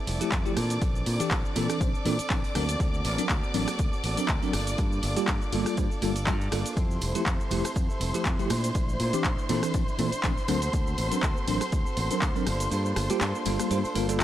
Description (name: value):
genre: filtered disco house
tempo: 121 BPM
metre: 4/4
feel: swing 55% on 16ths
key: unclear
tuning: A4 = 440 Hz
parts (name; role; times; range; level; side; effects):
- warm symphonic violin section; sustained chords; 0.0-14.2 s; C5 to D6; -34 LUFS; left 1 dB; sidechain pumping
- direct-recorded clean electric guitar; riff; 0.0-14.2 s; E3 to C5; -36 LUFS; right 4 dB; vintage 12-bit sampler grit, sidechain pumping
- modern bright fingered electric bass; bass; 0.1-14.2 s; F1 to Bb2; -30 LUFS; equal; sidechain pumping
- punchy analog drum machine; drums; 0.1-14.2 s; cabasa, handclaps, hi-hat, ride cymbal, rim click; -33 LUFS; equal; sidechain pumping on perc, sidechain pumping on hats, sidechain pumping on cymbals
- tambourine; percussion; 0.1-14.2 s; none; -44 LUFS; right 7 dB; none
- bell-like tine electric piano; accompaniment; 0.2-14.2 s; E3 to C5; -30 LUFS; equal; fast stereo tremolo, phaser, sidechain pumping
- electronic kick drum; drums; 0.3-12.3 s; none; -29 LUFS; equal; none
room: light reverb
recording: dry, gritty hardware recording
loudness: -24 LUFS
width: side -12 dB against mid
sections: 0.0-14.2 A section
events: kick drops out 12.7-14.2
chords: 0.0 Fmaj9; 0.6 Bbmaj9#11; 2.6 D7b13; 4.5 Gm9; 6.8 Fmaj9; 8.5 Bbmaj9#11; 10.5 D7b13; 12.5 Gm9